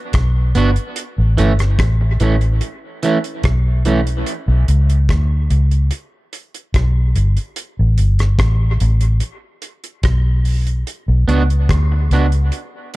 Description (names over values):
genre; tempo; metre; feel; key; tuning
dub reggae; 73 BPM; 4/4; straight; B minor; A4 = 440 Hz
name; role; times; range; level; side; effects
vintage muted fingered electric bass; bass; 0.1-12.5 s; G1 to D2; -14 LUFS; equal; none
damped 70s drum kit; drums; 0.1-13.0 s; hi-hat, kick drum, rim click; -21 LUFS; equal; none
electric guitar at the edge of break-up; accompaniment; 0.6-4.0, 11.3-12.3 s; E3 to F#4; -21 LUFS; right 3 dB; dub echo
room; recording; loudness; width
studio ambience; dark, warm production; -14 LUFS; side -19 dB against mid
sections
0.0-10.9 A section; 10.9-13.0 B section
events
none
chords
0.0 Bm; 1.0 A; 4.3 Bm; 7.6 Gadd9; 10.9 Bm